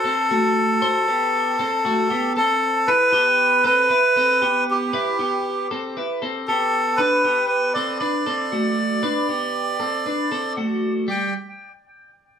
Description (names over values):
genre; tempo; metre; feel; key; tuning
indie pop; 117 BPM; 4/4; straight; unclear; A4 = 443 Hz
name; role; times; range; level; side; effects
melodica; melody; 0.0-11.3 s; G4 to G5; -19 LUFS; right 1 dB; analog delay
twelve-string electric guitar; arpeggios; 0.0-11.3 s; G3 to C5; -24 LUFS; left 1 dB; none
room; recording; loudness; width
wet studio reverb, RT60 0.7 s; band playing live in one room; -18 LUFS; side -8 dB against mid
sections
0.0-2.9 A section; 2.9-11.1 B section; 11.1-12.4 C section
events
none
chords
0.0 D7 (rootless); 2.9 Em; 7.0 Bm7; 11.1 N.C.